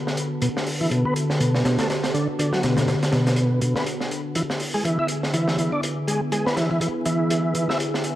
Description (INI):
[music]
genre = breakbeat, breaks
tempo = 122 BPM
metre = 4/4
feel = swing 58% on 16ths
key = B dorian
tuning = A4 = 441 Hz
[part]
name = lush unison pad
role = sustained chords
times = 0.0-8.2 s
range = D3 to A4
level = -26 LUFS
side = equal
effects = chorus
[part]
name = crunchy breakbeat drum kit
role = drums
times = 0.1-8.2 s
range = hi-hat, snare drum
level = -27 LUFS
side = equal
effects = high-pass filter on kick, high-pass filter on hats, high-pass filter on snare, high-pass filter on room
[part]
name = tonewheel organ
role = riff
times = 0.4-7.8 s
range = B2 to E4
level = -23 LUFS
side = equal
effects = chorus vibrato, low-pass filter, ping-pong delay
[sound]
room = light reverb, studio reverb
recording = vinyl crackle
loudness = -20 LUFS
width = side -13 dB against mid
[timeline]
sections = 0.0-8.2 A section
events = filter sweep on analog synth pad 0.0-8.2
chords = 0.0 Bm7; 4.4 E7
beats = | 0.42 0.91 1.40 1.90 | 2.39 2.88 3.37 3.86 | 4.35 4.85 5.34 5.83 | 6.32 6.81 7.30 7.80